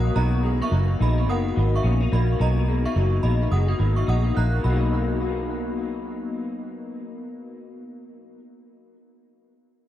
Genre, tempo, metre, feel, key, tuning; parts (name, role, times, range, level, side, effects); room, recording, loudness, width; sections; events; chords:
indie pop, bedroom pop; 107 BPM; 4/4; swing 60% on 16ths; B major; A4 = 440 Hz
synth chime; second line; 0.0-6.3 s; D#5 to F#6; -32 LUFS; right 4 dB; ensemble chorus, lush chorus, tape echo
electric guitar through a small old amp; accompaniment; 0.0-8.4 s; B2 to D#4; -27 LUFS; left 4 dB; analog chorus, warbly pitch drift, tape echo
vintage muted fingered electric bass; bass; 0.0-8.4 s; F#1 to B1; -21 LUFS; equal
light reverb, digital ambience; echo-heavy mix; -20 LUFS; side -12 dB against mid
0.2-4.6 A section; 4.6-6.9 B section
0.2 Bmaj7